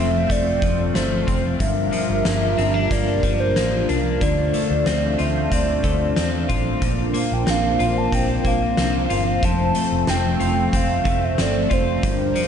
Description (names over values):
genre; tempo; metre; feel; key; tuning
dream pop; 92 BPM; 4/4; straight; F major; A4 = 440 Hz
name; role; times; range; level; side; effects
hollow clarinet-like synth lead; melody; 0.0-12.5 s; Bb4 to A5; -24 LUFS; right 1 dB; chorus, ping-pong delay
phased analog pad; sustained chords; 0.0-12.5 s; G3 to C5; -25 LUFS; right 1 dB; phaser, chorus
electric guitar at the edge of break-up; arpeggios; 0.0-12.5 s; F2 to F4; -25 LUFS; left 6 dB; wide subtle chorus, ping-pong delay
vintage muted fingered electric bass; bass; 0.0-12.3 s; F1 to E2; -25 LUFS; right 1 dB; none
oversized low-tuned drum kit; drums; 0.3-12.5 s; hi-hat, kick drum, snare drum; -24 LUFS; right 1 dB; none
room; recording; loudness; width
light reverb; dark, warm production, nothing above 10.6 kHz; -18 LUFS; side -8 dB against mid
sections
0.0-12.5 A section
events
none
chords
0.0 F; 1.6 Gm7; 4.2 Dm7; 6.8 Bbadd9; 9.4 F